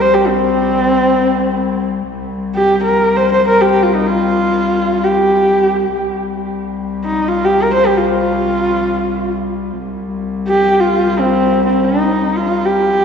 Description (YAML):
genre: mongolian traditional, Mongolian folk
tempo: free time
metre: none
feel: none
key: C yu mode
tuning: A4 = 440 Hz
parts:
  - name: warm horsehead fiddle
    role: melody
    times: 0.0-13.0 s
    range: C4 to C5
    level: -13 LUFS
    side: right 1 dB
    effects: tape echo
  - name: dark cello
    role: drone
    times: 0.0-13.0 s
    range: C2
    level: -19 LUFS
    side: left 4 dB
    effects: none
room: wet concert hall reverb, RT60 2.3 s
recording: heard from further back in the room, nothing above 7.8 kHz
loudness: -12 LUFS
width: side -6 dB against mid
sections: 0.0-2.1 A section; 2.1-13.0 A section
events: none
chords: none